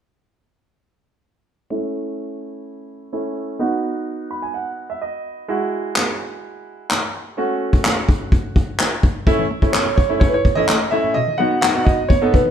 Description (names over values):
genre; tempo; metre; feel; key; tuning
dance-pop; 127 BPM; 4/4; straight; unclear; A4 = 440 Hz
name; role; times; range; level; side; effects
clear baby grand piano; accompaniment; 1.7-12.4 s; G#3 to B5; -23 LUFS; right 2 dB; low-pass filter
vintage brush drum kit; drums; 6.0-12.4 s; handclaps, kick drum, snare drum; -17 LUFS; equal; none
mallet-like synth pluck; arpeggios; 9.3-12.5 s; A2 to E4; -27 LUFS; left 4 dB; chorus
warm concert grand piano; melody; 9.7-12.5 s; B4 to F#5; -19 LUFS; right 1 dB; none
room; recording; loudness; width
moderate stone room reverb, RT60 1.1 s; band playing live in one room; -17 LUFS; side -9 dB against mid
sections
1.7-9.3 A section; 9.3-12.5 B section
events
filter sweep on grand piano 1.7-9.3; grand piano fill 4.1-5.5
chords
1.7 A; 3.6 B; 5.5 Eadd9; 7.4 F#m; 9.3 A; 11.2 B